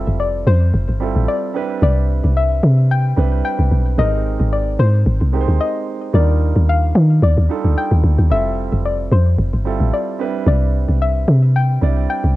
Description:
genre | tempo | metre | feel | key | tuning
amapiano | 111 BPM | 4/4 | swing 55% on 16ths | F lydian | A4 = 440 Hz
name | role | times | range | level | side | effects
soft round pluck | melody | 0.0-12.4 s | C5 to G5 | -23 LUFS | left 5 dB | chorus, cassette tape, plate reverb, tape echo
dark grand piano | accompaniment | 0.0-12.4 s | G3 to D5 | -24 LUFS | right 8 dB | cassette tape, plate reverb
deep log drum bass | bass | 0.0-12.4 s | F1 to Eb3 | -14 LUFS | equal | none
room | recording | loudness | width
little or no reverb | home recording on cassette | -14 LUFS | side -17 dB against mid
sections
0.0-12.4 A section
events
none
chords
0.0 Fmaj9; 1.5 Cmaj9; 4.0 Abmaj9; 6.1 Ebmaj9; 8.3 Fmaj9; 10.2 Cmaj9

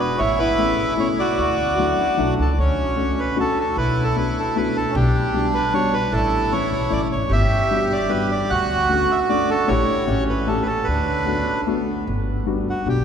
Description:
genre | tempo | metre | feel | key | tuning
musette waltz | 152 BPM | 3/4 | straight | D major | A4 = 440 Hz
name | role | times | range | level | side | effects
bandoneon | melody | 0.0-13.0 s | E4 to F#5 | -22 LUFS | right 1 dB | none
accordion | second line | 0.0-12.0 s | B3 to G4 | -24 LUFS | right 3 dB | none
upright bass | bass | 0.2-13.0 s | G1 to D2 | -24 LUFS | equal | none
dark upright piano | accompaniment | 0.6-13.0 s | E3 to G4 | -25 LUFS | left 4 dB | none
room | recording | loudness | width
wet cathedral reverb, RT60 5.6 s | recorded in a church or concert hall | -18 LUFS | side -8 dB against mid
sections
0.0-2.6 A section; 2.6-12.1 B section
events
none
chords
0.2 Aadd9; 1.4 Dadd9; 2.6 Dmaj7; 3.8 Bm7; 4.9 Gmaj7/B; 6.1 A; 7.3 Gmaj7; 8.5 Dmaj7; 9.7 A7sus4; 10.1 A7; 10.9 D6; 12.1 Gmaj7

